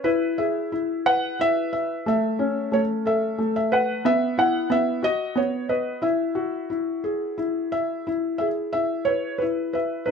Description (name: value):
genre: children's music, lullaby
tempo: 60 BPM (dotted quarters)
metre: 6/8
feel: rubato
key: E major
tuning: A4 = 442 Hz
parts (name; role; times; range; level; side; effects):
- felt-muted upright piano; solo; 0.0-10.1 s; A3 to F#5; -22 LUFS; left 1 dB; none
room: light reverb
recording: band playing live in one room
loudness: -22 LUFS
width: side -6 dB against mid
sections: 0.0-8.1 A section; 8.1-10.1 B section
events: none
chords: 0.0 E; 2.1 Aadd9; 4.0 E5/B; 5.0 B5; 6.0 Eadd9; 8.1 E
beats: | 0.04 1.06 | 2.06 3.06 | 4.05 5.03 | 6.03 7.04 | 8.06 9.08 | 10.08